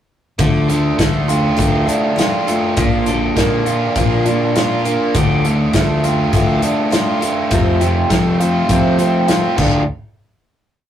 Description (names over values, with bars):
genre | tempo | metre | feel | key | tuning
folk rock and heartland rock | 101 BPM | 4/4 | straight | D minor | A4 = 440 Hz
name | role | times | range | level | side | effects
picked steel-string acoustic guitar | accompaniment | 0.4-9.8 s | F2 to F4 | -19 LUFS | left 2 dB | none
biting overdriven guitar | riff | 0.4-9.8 s | F2 to F4 | -17 LUFS | right 2 dB | none
hollow-body short-scale fingered electric bass | bass | 0.4-9.9 s | Bb1 to F3 | -20 LUFS | equal | none
natural country drum kit | drums | 0.4-9.7 s | crash cymbal, hi-hat, kick drum, snare drum | -19 LUFS | left 1 dB | none
room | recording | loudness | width
moderate booth ambience, RT60 0.2 s | rough rehearsal-room recording, tube saturation | -13 LUFS | side -10 dB against mid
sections
0.4-9.9 verse; 9.9-10.9 final hit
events
none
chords
0.4 Dm; 2.8 Bb; 5.2 Dm; 7.5 F; 9.6 Dm; 9.9 N.C.